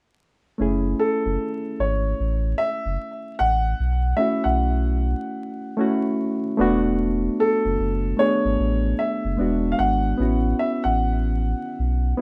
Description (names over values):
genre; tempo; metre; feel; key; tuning
R&B; 75 BPM; 4/4; swing 63% on 16ths; unclear; A4 = 441 Hz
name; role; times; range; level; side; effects
barky reed electric piano; accompaniment; 0.6-12.2 s; G#3 to G#4; -26 LUFS; equal; spring reverb
warm sub bass; bass; 0.6-12.1 s; E1 to B1; -25 LUFS; equal; none
warm baby grand piano; melody; 1.0-12.2 s; A4 to F#5; -27 LUFS; equal; none
room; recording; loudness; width
moderate studio reverb, RT60 0.6 s; rough home demo mix, vinyl crackle; -22 LUFS; mono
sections
0.6-12.2 A section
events
none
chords
0.6 F#m7; 3.8 B9sus4; 6.6 E7sus4; 9.4 E9; 10.2 A69